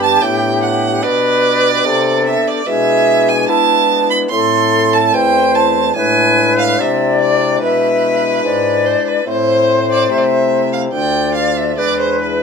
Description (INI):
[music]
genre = classical, baroque-style sonata movement with continuo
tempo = 73 BPM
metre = 4/4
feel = rubato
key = unclear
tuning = A4 = 442 Hz
[part]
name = bright concert flute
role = melody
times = 0.0-12.4 s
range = E4 to E5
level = -17 LUFS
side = left 6 dB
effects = none
[part]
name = rich violin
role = second line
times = 0.0-12.4 s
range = B4 to C6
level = -15 LUFS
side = right 6 dB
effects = none
[part]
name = pipe organ, foundations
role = accompaniment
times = 0.0-12.4 s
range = D2 to G4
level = -20 LUFS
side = left 3 dB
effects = none
[part]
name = mellow bassoon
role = bass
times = 0.0-12.4 s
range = D2 to B3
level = -19 LUFS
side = equal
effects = none
[sound]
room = moderate studio reverb, RT60 0.7 s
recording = minimal, uncompressed stereo recording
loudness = -11 LUFS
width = side -5 dB against mid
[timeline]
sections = 0.0-12.4 A section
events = none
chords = 0.0 G; 2.7 E7/B; 4.3 Am; 6.0 E7/A; 9.3 Am; 10.9 Dm; 11.8 E7